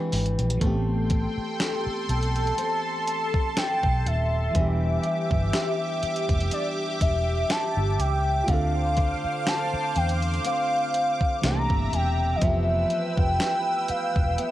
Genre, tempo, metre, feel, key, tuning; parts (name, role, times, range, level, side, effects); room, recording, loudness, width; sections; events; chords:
contemporary R&B; 61 BPM; 4/4; swing 54% on 16ths; A minor; A4 = 441 Hz
warm velvety synth lead; melody; 0.0-14.5 s; D5 to Bb5; -27 LUFS; equal; chorus, cassette tape, tape echo
FM electric piano with auto-pan; accompaniment; 0.0-14.5 s; E3 to A4; -35 LUFS; right 3 dB
nylon-string guitar; arpeggios; 0.0-14.5 s; C3 to G4; -33 LUFS; left 3 dB
vintage muted fingered electric bass; bass; 0.1-14.4 s; D#1 to E2; -26 LUFS; equal
clean 12-bit digital drum machine; drums; 0.1-14.5 s; hi-hat, kick drum, snare drum; -26 LUFS; equal; cassette tape
lush unison pad; sustained chords; 0.6-14.5 s; G4 to E6; -31 LUFS; equal; chorus, phaser
light reverb, digital ambience; home recording on cassette; -22 LUFS; side -14 dB against mid
0.0-14.5 A section
0.0 E7alt; 0.6 Am9; 4.5 Em7; 8.5 Dm7; 11.4 C13; 12.4 Fmaj9#11